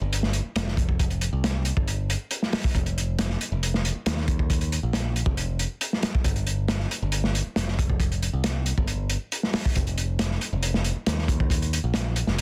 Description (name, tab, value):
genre	breakbeat, breaks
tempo	137 BPM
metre	4/4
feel	straight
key	G minor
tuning	A4 = 440 Hz
part	modern bright picked electric bass	bass	0.0-12.4 s	F1 to Eb2	-28 LUFS	equal	none
part	crunchy breakbeat drum kit	drums	0.1-12.4 s	hi-hat, kick drum, snare drum	-28 LUFS	equal	none
room	little or no reverb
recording	dense, heavily limited modern master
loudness	-26 LUFS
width	mono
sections	0.0-12.4 A section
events	none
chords	none